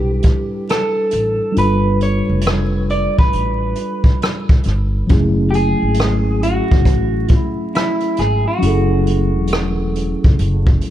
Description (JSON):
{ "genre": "lo-fi hip hop", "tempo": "68 BPM", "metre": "4/4", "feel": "swing 64% on 16ths", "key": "F# minor", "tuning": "A4 = 440 Hz", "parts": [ { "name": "electric guitar through a small old amp", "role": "melody", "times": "0.0-10.9 s", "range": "E4 to D5", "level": "-21 LUFS", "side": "equal", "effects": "low-pass filter" }, { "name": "mellow tine electric piano", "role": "accompaniment", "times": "0.0-10.9 s", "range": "F#3 to B4", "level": "-21 LUFS", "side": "equal", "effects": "medium stereo tremolo, cassette tape, low-pass filter" }, { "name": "upright bass", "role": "bass", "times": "0.0-10.8 s", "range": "E1 to B1", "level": "-18 LUFS", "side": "equal", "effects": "none" }, { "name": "vintage brush drum kit", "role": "drums", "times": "0.2-10.9 s", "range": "hi-hat, kick drum, rim click", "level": "-15 LUFS", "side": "equal", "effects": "none" } ], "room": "light reverb, studio reverb", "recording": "dark, warm production, vinyl crackle", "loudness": "-14 LUFS", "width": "side -12 dB against mid", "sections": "0.0-10.9 A section", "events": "none", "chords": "0.0 G6; 1.6 G9; 5.1 F#m7", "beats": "0.69 | 1.57 2.45 3.33 4.22 | 5.10 5.98 6.86 7.75 | 8.63 9.51 10.39" }